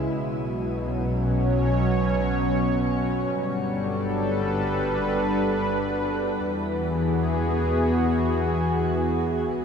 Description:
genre	ambient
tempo	free time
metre	none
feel	none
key	unclear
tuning	A4 = 439 Hz
part	warm analog pad	sustained chords	0.0-9.6 s	B2 to C#5	-23 LUFS	equal	chorus, shimmer reverb
part	rich studio double bass section	bass	0.0-9.6 s	G1 to E2	-29 LUFS	equal	none
part	analog drone	drone	0.0-9.6 s	B3 to F#4	-37 LUFS	equal	chorus
room	wet huge ambient reverb, RT60 7.4 s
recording	dark, warm production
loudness	-22 LUFS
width	side -6 dB against mid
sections	0.0-9.6 A section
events	fade-out on synth drone 0.0-9.6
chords	0.2 Bsus2; 3.3 Gadd9; 6.4 Eadd9

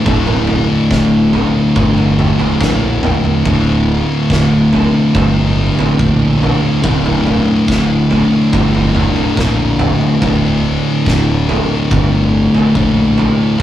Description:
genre	stoner and doom metal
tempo	71 BPM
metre	4/4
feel	straight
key	unclear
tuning	A4 = 439 Hz
part	thick fuzz guitar	riff	0.0-13.6 s	D2 to D3	-14 LUFS	left 2 dB	distortion
part	thick fuzz guitar	riff	0.0-13.6 s	D2 to D3	-17 LUFS	right 2 dB	distortion
part	fuzz fingered electric bass	bass	0.1-13.6 s	D1 to Bb1	-19 LUFS	equal	overdrive
part	oversized low-tuned drum kit	drums	0.1-13.6 s	kick drum, snare drum, toms	-18 LUFS	right 1 dB	none
room	moderate small room reverb, RT60 0.6 s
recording	rough rehearsal-room recording, tube saturation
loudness	-10 LUFS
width	side -12 dB against mid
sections	0.0-13.6 A section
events	none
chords	0.0 D5

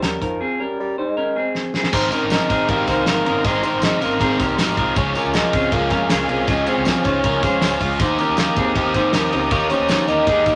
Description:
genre	jangly indie pop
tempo	158 BPM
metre	4/4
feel	straight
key	Ab major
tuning	A4 = 439 Hz
part	mellow bassoon	melody	0.0-10.6 s	F3 to Eb4	-25 LUFS	equal	none
part	electric guitar through a small old amp	arpeggios	0.0-10.6 s	Ab3 to Eb5	-25 LUFS	equal	warbly pitch drift
part	vintage muted fingered electric bass	bass	0.0-10.6 s	G1 to G2	-34 LUFS	equal	none
part	loose indie drum kit	drums	0.0-10.6 s	crash cymbal, hi-hat, kick drum, ride cymbal, snare drum	-25 LUFS	equal	none
part	crunchy overdriven guitar	accompaniment	1.9-10.6 s	Db3 to Bb4	-23 LUFS	equal	none
part	muted studio string section	sustained chords	1.9-10.6 s	Ab4 to Eb6	-32 LUFS	equal	none
part	tambourine	percussion	1.9-10.6 s	none	-41 LUFS	equal	none
room	wet small room reverb, RT60 0.5 s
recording	faint mains hum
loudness	-19 LUFS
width	mono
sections	0.0-1.9 A section; 1.9-10.6 B section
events	drum fill 1.6-1.9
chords	0.2 Fm7; 1.2 Abadd9; 5.0 Db; 8.0 Eb

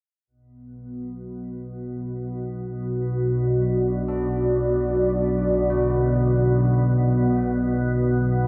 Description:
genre	dark ambient drone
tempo	55 BPM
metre	4/4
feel	straight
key	B minor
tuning	A4 = 440 Hz
part	dark analog pad	sustained chords	0.9-8.5 s	B3 to F#5	-27 LUFS	equal	chorus
part	organ-like drone	drone	1.7-8.5 s	B1 to B2	-25 LUFS	equal	ensemble chorus, built-in reverb, phaser
part	carillon bells	arpeggios	4.1-8.5 s	B2 to A4	-38 LUFS	equal	diffuse ambient delay
room	moderate huge ambient reverb, RT60 7.9 s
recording	none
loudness	-22 LUFS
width	mono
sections	0.3-8.5 A section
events	none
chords	0.3 Bm

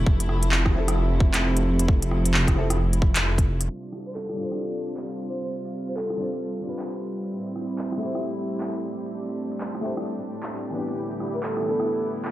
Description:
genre	future garage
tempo	132 BPM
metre	4/4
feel	swing 60% on 16ths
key	unclear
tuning	A4 = 439 Hz
part	dark upright piano	accompaniment	0.0-12.3 s	E3 to C5	-33 LUFS	left 2 dB	sidechain pumping, tape echo
part	dark studio string section	sustained chords	0.0-12.3 s	A2 to F4	-30 LUFS	right 1 dB	sidechain pumping
part	swelling detuned saw bass	bass	0.0-3.7 s	F1	-23 LUFS	equal	sidechain pumping
part	electronic kick drum	drums	0.1-3.5 s	none	-21 LUFS	equal	overdrive
part	organic electronic drum kit	drums	0.2-12.3 s	handclaps, hi-hat, rim click	-30 LUFS	equal	overdrive
part	backwards swelling texture	texture	5.5-12.3 s	G3 to G4	-39 LUFS	right 1 dB	built-in reverb
part	breathy flute-like synth lead	melody	4.1-6.6, 11.3-12.1 s	A4 to C5	-30 LUFS	equal	lush chorus, analog delay
room	moderate lush hall reverb, RT60 1.8 s, digital ambience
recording	low-pass filter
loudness	-23 LUFS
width	side -15 dB against mid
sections	0.0-3.7 A section; 3.7-12.3 B section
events	filter sweep 3.7-12.3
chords	0.1 Fmaj7; 3.7 G7sus4; 7.3 Am7; 11.0 E7sus4

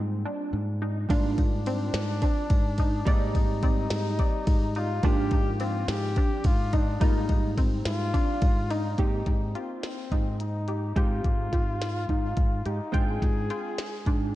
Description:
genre	progressive instrumental, band music in an uneven meter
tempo	213 BPM (eighths)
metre	7/8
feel	straight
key	Ab lydian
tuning	A4 = 439 Hz
part	hollow-body jazz guitar	accompaniment	0.0-14.3 s	F3 to G4	-36 LUFS	right 2 dB	ensemble chorus
part	fingered electric bass	bass	0.0-14.3 s	Ab2	-30 LUFS	equal	none
part	tight sequenced synth	arpeggios	0.3-14.3 s	C4 to G5	-34 LUFS	right 1 dB	chorus, ping-pong delay
part	breathy flugelhorn	second line	1.1-14.3 s	C4 to Ab4	-34 LUFS	left 3 dB	none
part	glitchy drum kit	drums	1.1-14.2 s	hi-hat, kick drum, ride cymbal, snare drum	-26 LUFS	equal	none
room	light reverb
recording	cassette tape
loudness	-24 LUFS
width	side -15 dB against mid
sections	0.0-9.0 A section; 9.0-14.3 B section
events	none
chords	0.0 Ebadd9/Ab; 3.1 Abmaj7; 5.0 Bb/Ab; 7.0 Ebadd9/Ab; 9.0 Abmaj7; 11.0 Fm9/Ab; 12.9 Fm69/Ab

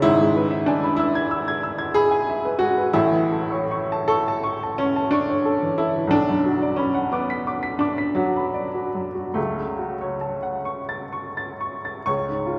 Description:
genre	classical, romantic nocturne for solo piano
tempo	41-64 BPM (dotted quarters)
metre	9/8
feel	rubato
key	unclear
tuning	A4 = 441 Hz
part	clear upright piano	solo	0.0-12.6 s	G#1 to B6	-23 LUFS	equal	none
room	wet cathedral reverb, RT60 5.1 s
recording	recorded in a church or concert hall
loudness	-23 LUFS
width	mono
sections	0.0-12.6 A section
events	none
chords	0.0 E/G#; 2.9 A; 6.1 Bm; 9.4 F#m/C#; 12.1 C#

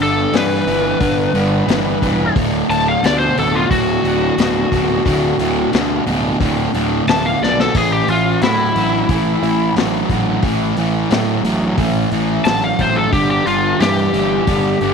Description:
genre	blues rock power trio and southern rock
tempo	89 BPM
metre	4/4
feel	straight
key	D major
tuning	A4 = 441 Hz
part	overdriven slide guitar	melody	0.0-14.9 s	E4 to A5	-18 LUFS	left 2 dB	none
part	fuzz guitar	riff	0.0-14.9 s	D2 to F#3	-17 LUFS	right 1 dB	distortion
part	fuzz fingered electric bass	bass	0.0-14.9 s	D1 to A2	-22 LUFS	right 1 dB	overdrive
part	vintage drum kit	drums	0.3-14.9 s	hi-hat, kick drum, snare drum, splash cymbal	-21 LUFS	left 3 dB	none
room	light reverb, small room ambience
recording	1960s-style stereo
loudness	-14 LUFS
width	side -6 dB against mid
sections	0.0-14.9 A section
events	drum fill 7.4-7.8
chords	0.0 G; 2.4 D; 7.8 A5; 13.1 G5

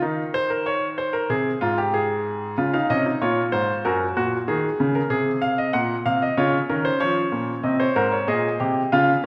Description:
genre	classical, baroque-style 3-part fugue for grand piano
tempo	94 BPM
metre	4/4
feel	straight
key	unclear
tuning	A4 = 441 Hz
part	clear baby grand piano	solo	0.0-9.3 s	Gb2 to Gb5	-22 LUFS	equal	none
room	wet recital hall reverb, RT60 1.8 s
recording	none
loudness	-22 LUFS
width	mono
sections	0.0-9.3 A section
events	none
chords	0.0 Eb5; 1.3 Ab; 2.6 Db; 3.8 Gb; 5.1 Ab7/C; 6.4 Db; 7.6 Ab

